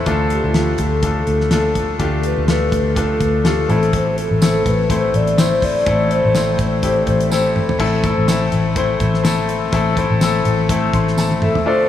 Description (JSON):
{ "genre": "piano-driven pop", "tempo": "124 BPM", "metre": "4/4", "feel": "swing 56% on 16ths", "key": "unclear", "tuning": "A4 = 440 Hz", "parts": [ { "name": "bright upright piano", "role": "accompaniment", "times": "0.0-11.9 s", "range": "A2 to C6", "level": "-19 LUFS", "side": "left 3 dB", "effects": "none" }, { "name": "vintage muted fingered electric bass", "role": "bass", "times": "0.0-11.6 s", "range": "A1 to D2", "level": "-19 LUFS", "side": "left 1 dB", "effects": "none" }, { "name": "damped 70s drum kit", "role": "drums", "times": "0.1-11.7 s", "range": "crash cymbal, hi-hat, kick drum, snare drum, toms", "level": "-22 LUFS", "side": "equal", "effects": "none" }, { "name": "mellow hollow wooden-headed alto flute", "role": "melody", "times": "0.3-7.7, 11.4-11.9 s", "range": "F4 to D5", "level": "-21 LUFS", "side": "equal", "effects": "diffuse ambient delay" }, { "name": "tambourine", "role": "percussion", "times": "4.4-11.3 s", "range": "none", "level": "-35 LUFS", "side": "right 5 dB", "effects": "none" } ], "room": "moderate huge ambient reverb, RT60 7.5 s", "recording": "dreamy mix soaked in reverb, studio ambience", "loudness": "-14 LUFS", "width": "side -11 dB against mid", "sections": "0.1-7.8 A section; 7.8-11.7 B section", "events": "drum fill 7.3-7.8, 11.2-11.7", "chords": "0.1 Dm; 3.7 Am", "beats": "| 0.07 0.55 1.03 1.52 | 2.00 2.48 2.97 3.45 | 3.93 4.42 4.90 5.38 | 5.87 6.35 6.83 7.32 | 7.80 8.28 8.76 9.25 | 9.73 10.21 10.69 11.18 | 11.66" }